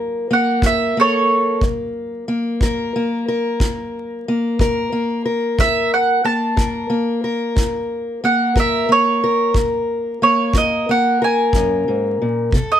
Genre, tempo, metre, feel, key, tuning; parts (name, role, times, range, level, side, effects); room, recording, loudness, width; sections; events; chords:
acoustic country blues, solo or duo; 60 BPM (dotted quarters); 12/8; straight; F# mixolydian; A4 = 440 Hz
mandolin; melody; 0.0-12.8 s; A4 to A5; -16 LUFS; right 3 dB
fingerpicked steel-string acoustic guitar; accompaniment; 0.0-12.8 s; F#2 to A#4; -19 LUFS; left 2 dB
kick drum; drums; 0.6-12.7 s; -19 LUFS; equal
light reverb; vinyl crackle; -16 LUFS; side -10 dB against mid
0.0-12.8 A section
0.0 F#